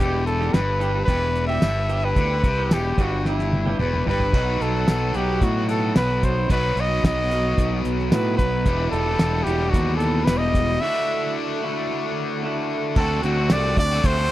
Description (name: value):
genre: indie rock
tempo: 111 BPM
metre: 4/4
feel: straight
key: E minor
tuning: A4 = 441 Hz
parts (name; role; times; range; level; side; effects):
- bright trumpet; melody; 0.0-14.3 s; E4 to E5; -24 LUFS; equal; tape echo
- electric guitar through a small old amp; riff; 0.0-14.3 s; E2 to G4; -30 LUFS; right 8 dB; analog chorus, tape echo
- overdriven electric guitar; riff; 0.0-14.3 s; E2 to G4; -27 LUFS; left 5 dB; none
- growling fingered electric bass; bass; 0.0-14.3 s; E1 to A2; -24 LUFS; equal; overdrive
- cloth-damped thuddy drum kit; drums; 0.0-14.2 s; crash cymbal, hi-hat, kick drum, snare drum, tambourine, toms; -21 LUFS; equal; none
room: little or no reverb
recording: dry, close 1970s-style studio recording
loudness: -19 LUFS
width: side -14 dB against mid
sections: 0.0-4.3 A section; 4.3-13.0 B section; 13.0-14.3 C section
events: drum fill 3.3-4.3; break 10.8-13.0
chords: 0.0 Em; 4.3 B; 8.7 Em; 10.8 Dadd9; 13.0 D7